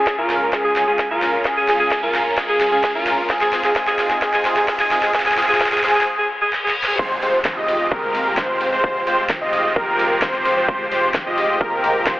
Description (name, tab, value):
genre	EDM, festival progressive house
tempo	130 BPM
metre	4/4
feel	straight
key	F minor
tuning	A4 = 440 Hz
part	breathy alto saxophone	melody	0.0-7.0 s	F4 to Ab4	-21 LUFS	equal	dub echo
part	mellow electric guitar	accompaniment	0.0-6.1 s	Ab3 to Ab4	-24 LUFS	equal	sidechain pumping, dub echo
part	lush unison pad	sustained chords	0.0-12.2 s	C3 to G4	-30 LUFS	equal	chorus, phaser, sidechain pumping
part	saturated sub bass	bass	0.0-12.2 s	F1 to Db2	-44 LUFS	equal	sidechain pumping
part	riser, reverse cymbal and downlifter	sound effects	0.0-10.7 s	none	-30 LUFS	left 1 dB	none
part	electronic kick drum	drums	0.1-12.2 s	none	-21 LUFS	equal	overdrive, high-pass filter on kick
part	pop drum kit	drums	0.1-12.2 s	crash cymbal, hi-hat, snare drum	-24 LUFS	equal	high-pass filter on snare, high-pass filter on hats, high-pass filter on cymbals
part	wide unison lead	arpeggios	0.2-12.2 s	Ab4 to Eb5	-22 LUFS	equal	sidechain pumping, dub echo
part	supersaw chords	riff	0.2-12.2 s	Ab3 to Eb5	-22 LUFS	equal	phaser, sidechain pumping, low-pass filter, dub echo
room	wet lush hall reverb, RT60 1.7 s, digital ambience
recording	high-pass filter, telephone sound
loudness	-16 LUFS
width	side -17 dB against mid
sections	0.0-7.0 A section; 7.0-12.2 B section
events	build-up 0.0-7.0; drum fill 0.0-6.1, 6.5-7.0; filter sweep on supersaw synth 0.0-7.0; break 6.1-7.0; reverse cymbal 6.1-7.0; drop 7.0-12.2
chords	0.0 Db; 3.3 Ab; 7.0 Fmadd9